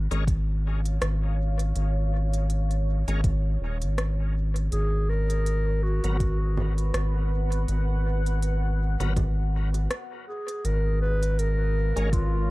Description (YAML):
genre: ambient dub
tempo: 81 BPM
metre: 4/4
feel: swing 56% on 16ths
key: G# dorian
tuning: A4 = 440 Hz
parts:
  - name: deep dark ambient pad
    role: sustained chords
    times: 0.7-12.5 s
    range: G#3 to F#5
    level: -38 LUFS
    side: right 2 dB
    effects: chorus, built-in reverb
  - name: round analog bass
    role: bass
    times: 0.0-12.5 s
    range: D#1 to G#1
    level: -24 LUFS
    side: equal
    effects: none
  - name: bright tonewheel organ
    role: stabs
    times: 0.1-12.1 s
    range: F#3 to A#4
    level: -40 LUFS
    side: left 2 dB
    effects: overdrive, chorus vibrato, slow rotary speaker, low-pass filter, dub echo
  - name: organic electronic drum kit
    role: drums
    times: 0.1-12.3 s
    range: congas, hi-hat, rim click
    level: -35 LUFS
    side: right 1 dB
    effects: small room ambience, dub echo
  - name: electronic kick drum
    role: drums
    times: 0.3-12.3 s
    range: none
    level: -26 LUFS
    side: equal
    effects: small room ambience
  - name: mellow clarinet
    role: melody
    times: 4.7-12.5 s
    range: E#4 to B4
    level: -32 LUFS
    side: equal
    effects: dub echo
room: digital ambience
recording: dark, warm production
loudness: -23 LUFS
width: side -20 dB against mid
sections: 0.0-12.5 A section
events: fade-in on ambient pad 0.0-12.5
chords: 0.0 A#m7/G# (rootless); 4.7 G#m7; 10.6 A#m7/G#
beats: 0.28 1.02 | 1.76 2.50 3.24 3.98 | 4.72 5.46 6.20 6.95 | 7.68 8.43 9.17 9.91 | 10.65 11.39 12.13